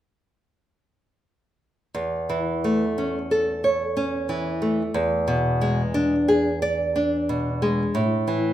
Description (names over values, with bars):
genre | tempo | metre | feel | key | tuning
classical | 60 BPM | 3/4 | rubato | A major | A4 = 439 Hz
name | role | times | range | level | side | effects
nylon-string guitar | accompaniment | 1.9-8.5 s | E2 to D5 | -21 LUFS | equal | none
room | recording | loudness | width
wet recital hall reverb, RT60 1.4 s | minimal, uncompressed stereo recording | -21 LUFS | side -12 dB against mid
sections
1.9-8.5 A section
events
none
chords
1.9 A/E; 4.9 E7; 8.0 A5